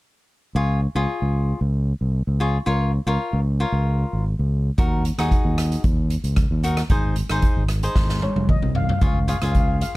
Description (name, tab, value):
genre	calypso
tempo	113 BPM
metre	4/4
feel	straight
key	Db major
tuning	A4 = 440 Hz
part	overdriven fingered electric bass	bass	0.5-9.8 s	F1 to Eb2	-21 LUFS	equal	none
part	cavaquinho	accompaniment	0.6-10.0 s	Eb4 to Db5	-26 LUFS	left 2 dB	none
part	street-band drum kit	drums	4.8-9.9 s	hi-hat, kick drum, rim click, snare drum, toms	-21 LUFS	equal	none
part	steel pan	melody	8.2-10.0 s	Db5 to F5	-28 LUFS	left 4 dB	none
room	little or no reverb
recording	dark, warm production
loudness	-19 LUFS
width	side -19 dB against mid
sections	0.6-9.0 A section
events	drum fill 8.0-9.0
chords	0.6 Db; 2.7 Bbm/Db; 4.8 Ebm; 6.9 Ab; 9.0 Db